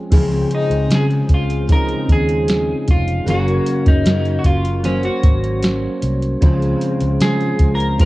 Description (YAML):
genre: indie pop, bedroom pop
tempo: 76 BPM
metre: 4/4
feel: straight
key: Db major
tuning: A4 = 442 Hz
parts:
  - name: picked steel-string acoustic guitar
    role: accompaniment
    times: 0.0-8.1 s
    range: Gb2 to Db4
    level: -21 LUFS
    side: left 2 dB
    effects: ensemble chorus, vibrato effect, cassette tape
  - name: soft electric-piano-like synth keys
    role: accompaniment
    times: 0.0-8.1 s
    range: Fb3 to C5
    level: -24 LUFS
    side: right 2 dB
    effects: chorus, cassette tape
  - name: vintage muted fingered electric bass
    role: bass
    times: 0.1-8.1 s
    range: F1 to Db3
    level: -20 LUFS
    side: equal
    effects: none
  - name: soft vintage rhythm box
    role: drums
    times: 0.1-8.1 s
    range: crash cymbal, hi-hat, kick drum, snare drum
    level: -14 LUFS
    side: equal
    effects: overdrive, cassette tape
  - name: clean electric guitar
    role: melody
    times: 0.5-8.1 s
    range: Db4 to C5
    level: -22 LUFS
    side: equal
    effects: lush chorus
room: light reverb, digital ambience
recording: home recording on cassette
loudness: -14 LUFS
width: side -18 dB against mid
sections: 0.1-8.1 A section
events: clean electric guitar solo 0.1-8.1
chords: 0.1 Dbmaj7; 3.3 Gb; 6.4 Dbmaj7